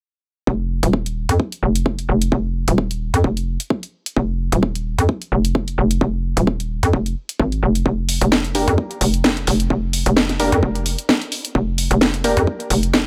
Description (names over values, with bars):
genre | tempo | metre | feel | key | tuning
bass house | 130 BPM | 4/4 | swing 55% on 16ths | unclear | A4 = 440 Hz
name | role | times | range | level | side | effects
hollow knocking FM bass | bass | 0.5-13.1 s | Eb1 to F2 | -21 LUFS | equal | tube saturation, sidechain pumping
electronic kick drum | drums | 0.5-13.0 s | none | -23 LUFS | equal | high-pass filter on kick
house drum kit | drums | 0.8-13.0 s | hi-hat, snare drum | -22 LUFS | equal | none
orchestra-hit-like synth stab | stabs | 8.5-12.4 s | Bb3 to Bb4 | -25 LUFS | equal | built-in reverb, sidechain pumping, tape echo
room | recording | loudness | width
digital ambience | none | -19 LUFS | mono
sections
0.5-13.1 A section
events
none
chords
0.5 N.C.; 7.9 Gm/F